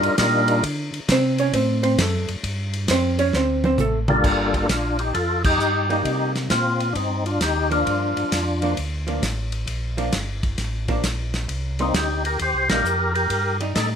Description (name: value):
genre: soul jazz organ trio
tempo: 132 BPM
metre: 4/4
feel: swing 66% on 8ths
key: G minor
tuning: A4 = 441 Hz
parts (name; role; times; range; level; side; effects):
- percussive tonewheel organ; melody; 0.0-0.6, 4.1-8.7, 11.8-13.9 s; G3 to C5; -21 LUFS; left 1 dB; slow rotary speaker, overdrive, chorus vibrato
- hollow-body jazz guitar; accompaniment; 0.0-14.0 s; F3 to D5; -23 LUFS; right 2 dB; none
- mellow tonewheel organ; bass; 0.0-14.0 s; G1 to D3; -25 LUFS; equal; slow rotary speaker
- warm soul drum kit; drums; 0.0-13.9 s; crash cymbal, hi-hat, kick drum, ride cymbal, snare drum, toms; -26 LUFS; equal; none
room: light reverb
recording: minimal, uncompressed stereo recording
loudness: -19 LUFS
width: side -8 dB against mid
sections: 0.0-4.2 A section; 4.2-14.0 B section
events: hollow-body jazz guitar solo 0.0-4.2; drum fill 3.3-4.2; band accent 5.4, 12.6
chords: 0.0 Ebmaj7; 0.6 D7; 2.4 C#maj7#11; 3.3 D5; 4.2 Gm7; 6.1 Cm7; 7.9 Gm7; 11.5 Cm7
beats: 0.19 | 0.64 1.09 1.54 1.99 | 2.44 2.89 3.34 3.79 | 4.24 4.70 5.15 5.60 | 6.05 6.50 6.96 7.41 | 7.86 8.32 8.77 9.22 | 9.68 10.13 10.58 11.03 | 11.49 11.94 12.39 12.85 | 13.30 13.75